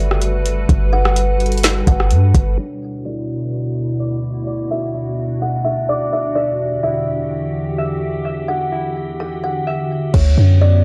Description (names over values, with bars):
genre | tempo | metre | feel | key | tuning
hip hop, atmospheric cloud-rap | 127 BPM | 4/4 | half-time | D major | A4 = 440 Hz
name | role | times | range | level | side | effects
kalimba | melody | 0.0-10.8 s | C#5 to G5 | -26 LUFS | equal | low-pass filter, digital delay
glassy FM pad | sustained chords | 0.0-10.8 s | D2 to B4 | -25 LUFS | equal | ensemble chorus, built-in reverb, low-pass filter
warm 808-style bass | bass | 0.0-2.6, 10.1-10.8 s | G1 to G2 | -16 LUFS | equal | none
smooth R&B drum kit | drums | 0.1-2.5, 10.1-10.2 s | crash cymbal, hi-hat, kick drum, rim click, snare drum | -20 LUFS | equal | none
concert harp | arpeggios | 2.6-10.8 s | D4 to E5 | -32 LUFS | equal | low-pass filter, digital delay
room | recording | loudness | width
light reverb | dark, warm production | -18 LUFS | mono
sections
0.0-2.6 A section; 2.6-10.1 B section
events
filter sweep 2.6-10.1; hi-hats muted 10.1-10.8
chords
0.0 Gmaj9; 2.6 D69; 6.4 Em9; 10.1 D69